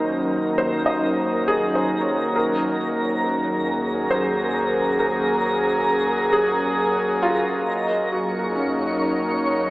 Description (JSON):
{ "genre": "ambient", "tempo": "68 BPM", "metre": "3/4", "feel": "straight", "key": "Eb dorian", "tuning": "A4 = 442 Hz", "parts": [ { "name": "airy breathy pad", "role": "sustained chords", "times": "0.0-9.7 s", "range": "Gb3 to Bb4", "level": "-22 LUFS", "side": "equal", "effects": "chorus" }, { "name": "felt-muted upright piano", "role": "arpeggios", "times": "0.0-9.7 s", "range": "Db4 to Eb5", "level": "-25 LUFS", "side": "equal", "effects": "analog delay" }, { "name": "warm sub bass", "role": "bass", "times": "0.0-9.7 s", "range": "Eb2", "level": "-45 LUFS", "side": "equal", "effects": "none" }, { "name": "bowed-like drone", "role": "drone", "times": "0.0-9.7 s", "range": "Eb3", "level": "-40 LUFS", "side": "equal", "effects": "none" }, { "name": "twinkling granular texture", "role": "texture", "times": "0.0-9.7 s", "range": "Bb4 to Db6", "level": "-27 LUFS", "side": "equal", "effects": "built-in reverb" }, { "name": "warm velvety synth lead", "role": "melody", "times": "7.7-9.7 s", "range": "Db5 to Eb5", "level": "-28 LUFS", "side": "right 1 dB", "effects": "chorus, analog delay" } ], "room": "wet lush hall reverb, RT60 2.8 s", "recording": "dreamy mix soaked in reverb, AM radio sound", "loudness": "-19 LUFS", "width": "side -20 dB against mid", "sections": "0.0-7.7 A section; 7.7-9.7 B section", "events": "fade-in on sub bass 0.0-7.7; fade-in on synth texture 0.0-7.7; filter sweep on analog synth pad 0.0-7.7", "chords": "0.0 Ebm7; 2.3 Gbadd9/Eb; 7.7 Ebm7" }